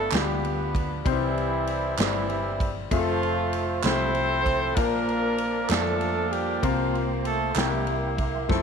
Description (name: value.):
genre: slow gospel.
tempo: 64 BPM (dotted quarters).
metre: 6/8.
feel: straight.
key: unclear.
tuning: A4 = 441 Hz.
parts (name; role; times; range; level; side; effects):
mellow horn section; melody; 0.0-8.6 s; E3 to C5; -27 LUFS; right 1 dB; none.
clear baby grand piano; accompaniment; 0.0-8.6 s; G2 to A5; -30 LUFS; left 13 dB; none.
hollow-body short-scale fingered electric bass; bass; 0.0-8.6 s; F1 to F2; -31 LUFS; right 1 dB; none.
swinging big-band drum kit; drums; 0.1-8.6 s; kick drum, ride cymbal, snare drum; -30 LUFS; right 1 dB; none.
group handclap; percussion; 0.1-7.8 s; none; -32 LUFS; right 15 dB; none.
percussive tonewheel organ; sustained chords; 2.9-8.6 s; Bb3 to D6; -33 LUFS; right 13 dB; slow rotary speaker, chorus vibrato.
room: light reverb, small room reverb.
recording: 1960s-style stereo with parts hard left and right.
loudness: -23 LUFS.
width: side -6 dB against mid.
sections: 0.0-8.6 A section.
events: none.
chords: 0.0 G7; 1.1 C; 2.9 Fmaj7; 4.8 Bbmaj7; 6.6 C7sus4; 7.6 C7.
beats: 0.12 | 1.05 1.98 | 2.91 3.84 | 4.77 5.70 | 6.63 7.56 | 8.50.